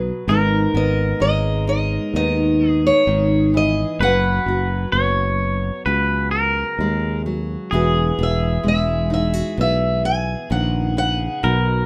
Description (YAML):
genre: acoustic folk-pop ballad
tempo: 64 BPM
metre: 4/4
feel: straight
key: unclear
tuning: A4 = 440 Hz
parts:
  - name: nylon-string guitar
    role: accompaniment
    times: 0.0-11.9 s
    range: G#2 to B4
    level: -25 LUFS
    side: equal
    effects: none
  - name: sustaining fretless electric bass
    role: bass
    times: 0.0-11.8 s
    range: E1 to D#2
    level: -23 LUFS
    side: equal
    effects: none
  - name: pedal steel guitar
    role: second line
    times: 0.3-11.9 s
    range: G#4 to C#5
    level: -26 LUFS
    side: equal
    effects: none
  - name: picked steel-string acoustic guitar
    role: melody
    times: 0.8-11.9 s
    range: C#5 to G#5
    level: -24 LUFS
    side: equal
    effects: none
room: light reverb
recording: none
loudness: -19 LUFS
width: mono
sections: 0.0-11.9 A section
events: none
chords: 0.3 G#madd9; 4.0 F#sus4; 7.7 Eadd9